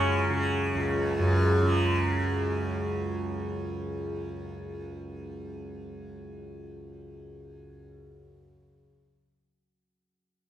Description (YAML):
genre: indian classical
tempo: 126 BPM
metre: 5/4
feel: straight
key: unclear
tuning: A4 = 440 Hz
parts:
  - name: sitar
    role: melody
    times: 0.0-3.0 s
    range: C#4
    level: -34 LUFS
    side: left 1 dB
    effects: none
  - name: tanpura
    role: drone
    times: 0.0-8.8 s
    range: C#2 to C#3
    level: -28 LUFS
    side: right 1 dB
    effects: none
room: wet scoring stage reverb, RT60 1.5 s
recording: minimal, uncompressed stereo recording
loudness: -26 LUFS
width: side -11 dB against mid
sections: 0.0-1.8 A section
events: none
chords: none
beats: 0.34 0.82 1.29